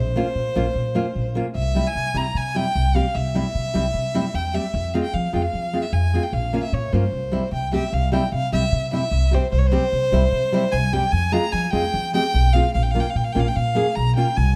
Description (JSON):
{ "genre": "klezmer", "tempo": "150 BPM", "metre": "4/4", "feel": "straight", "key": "C phrygian dominant", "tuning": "A4 = 440 Hz", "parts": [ { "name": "rich violin", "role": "melody", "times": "0.0-14.6 s", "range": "C5 to Bb5", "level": "-27 LUFS", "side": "equal", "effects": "none" }, { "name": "upright bass", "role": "bass", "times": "0.0-14.6 s", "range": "Bb1 to F3", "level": "-24 LUFS", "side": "equal", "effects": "none" }, { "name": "nylon-string guitar", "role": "accompaniment", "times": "0.2-14.3 s", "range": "G3 to Ab4", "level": "-27 LUFS", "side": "equal", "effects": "none" } ], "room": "light reverb", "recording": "dark, warm production", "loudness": "-21 LUFS", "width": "mono", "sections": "0.0-7.9 A section; 7.9-14.6 A section", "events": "none", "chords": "0.0 Bbm; 1.6 C; 4.7 Fm; 6.3 Bbm; 7.1 C; 11.1 Fm; 12.7 Bbm" }